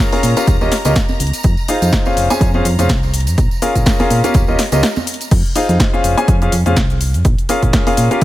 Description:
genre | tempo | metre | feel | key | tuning
piano house | 124 BPM | 4/4 | swing 56% on 16ths | unclear | A4 = 441 Hz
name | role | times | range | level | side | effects
string machine, violins | sustained chords | 0.0-5.3 s | Bb5 to Bb6 | -30 LUFS | equal | ensemble chorus, sidechain pumping
clear grand piano | riff | 0.0-8.2 s | Db4 to Ab5 | -17 LUFS | left 1 dB | sidechain pumping, digital delay
house drum kit | drums | 0.1-8.2 s | crash cymbal, hi-hat, shaker, snare drum | -21 LUFS | left 1 dB | none
tambourine and congas | percussion | 0.1-5.3 s | none | -25 LUFS | right 4 dB | none
solid FM bass | bass | 0.2-8.2 s | Eb1 to Bb2 | -16 LUFS | equal | tube saturation, sidechain pumping
electronic kick drum | drums | 0.5-8.2 s | none | -15 LUFS | equal | none
room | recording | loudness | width
little or no reverb | none | -12 LUFS | side -15 dB against mid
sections
0.0-5.3 A section; 5.3-8.2 B section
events
break 4.8-5.3; drop 5.3-8.2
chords
0.5 Eb9; 1.4 Fm7; 2.2 Dbmaj7/F; 3.4 Bbm7; 4.3 Eb9; 5.3 Fm7; 6.0 Dbmaj7/F; 7.2 Bbm7

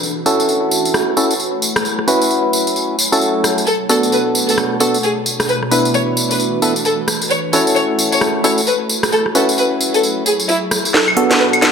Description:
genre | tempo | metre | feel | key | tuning
UK garage, two-step garage | 132 BPM | 4/4 | swing 61% on 16ths | A major | A4 = 440 Hz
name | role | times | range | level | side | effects
ethereal airy pad | sustained chords | 0.0-11.7 s | B2 to G#5 | -23 LUFS | right 1 dB | ensemble chorus, built-in reverb, phaser
garage drum kit | drums | 0.0-11.7 s | claves, hi-hat, rim click, snare drum, tambourine | -17 LUFS | equal | high-pass filter on snare, high-pass filter on hats, high-pass filter on perc, high-pass filter on room
percussive organ stab | stabs | 0.3-11.7 s | B3 to B4 | -17 LUFS | equal | chorus, ping-pong delay
dark symphonic violin section | melody | 3.7-11.5 s | E4 to C#5 | -19 LUFS | left 1 dB | low-pass filter, ping-pong delay
room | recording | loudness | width
wet plate reverb, RT60 1.9 s | bright 1980s-style digital production | -13 LUFS | side -6 dB against mid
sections
0.0-10.9 A section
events
filter sweep on ambient pad 0.0-10.9; drum fill 10.9-11.7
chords
0.0 A6; 1.9 F#m7; 3.7 Bm7; 5.5 E7sus4; 7.3 A6; 9.1 F#m7; 10.9 Bm7

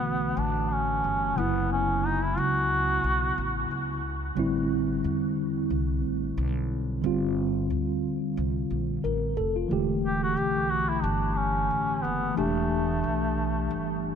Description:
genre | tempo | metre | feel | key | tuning
hip hop, jazz-hop | 90 BPM | 4/4 | swing 57% on 16ths | E dorian | A4 = 440 Hz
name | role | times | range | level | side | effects
clear duduk | melody | 0.0-3.7, 10.0-14.0 s | A3 to G4 | -28 LUFS | equal | tape echo
mellow tine electric piano | accompaniment | 0.0-14.2 s | C#3 to Bb4 | -28 LUFS | right 1 dB | slow stereo tremolo
upright bass | bass | 0.0-14.2 s | E1 to E2 | -31 LUFS | equal | none
room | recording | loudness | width
moderate huge ambient reverb, RT60 6.7 s | dreamy mix soaked in reverb | -25 LUFS | side -7 dB against mid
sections
0.0-9.7 A section; 9.7-14.2 B section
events
duduk solo 9.7-14.2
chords
0.0 Em11; 1.4 F#7(no3); 4.4 Am11; 7.0 Gm11; 9.7 Em11

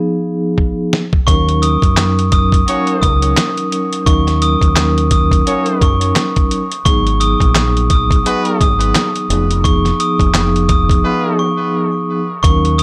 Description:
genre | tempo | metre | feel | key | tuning
hip hop, boom-bap hip-hop | 86 BPM | 4/4 | swing 58% on 16ths | Eb minor | A4 = 440 Hz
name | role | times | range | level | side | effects
vibraphone with soft mallets | accompaniment | 0.0-12.8 s | F3 to Bb4 | -20 LUFS | equal | cassette tape, high-pass filter, low-pass filter
dusty soul sampler-style drum kit | drums | 0.6-12.8 s | handclaps, hi-hat, kick drum, snare drum | -17 LUFS | equal | none
glockenspiel with brass mallets | melody | 1.3-12.8 s | Db6 to Eb6 | -20 LUFS | equal | high-pass filter, low-pass filter
deep dub fingered electric bass | bass | 1.3-12.8 s | F1 to Gb2 | -18 LUFS | equal | none
warm horn section | stabs | 2.7-11.5 s | Ab3 to Db5 | -26 LUFS | equal | high-pass filter, low-pass filter, delay
room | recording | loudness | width
studio reverb | none | -14 LUFS | mono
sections
0.0-1.3 A section; 1.3-12.4 B section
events
break 0.0-1.3, 11.0-12.4; drum fill 0.6-1.3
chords
0.0 Fm7b5; 1.3 Ebm7; 6.9 Abm7; 9.3 Fm7b5

